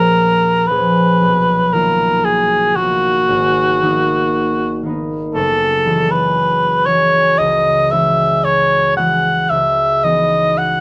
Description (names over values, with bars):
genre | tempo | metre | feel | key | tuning
classical, impressionist duo for cor anglais and harp | 58 BPM | 4/4 | rubato | unclear | A4 = 440 Hz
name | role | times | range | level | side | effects
warm cor anglais | melody | 0.0-10.8 s | F#4 to F#5 | -16 LUFS | equal | none
concert harp | accompaniment | 0.0-10.8 s | F#1 to G#4 | -21 LUFS | equal | none
room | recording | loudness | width
light reverb | none | -15 LUFS | mono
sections
0.0-10.8 A section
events
none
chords
0.0 D#m11; 1.2 Bmaj7#11; 3.3 G#m9; 5.3 F#sus2; 9.5 C#m11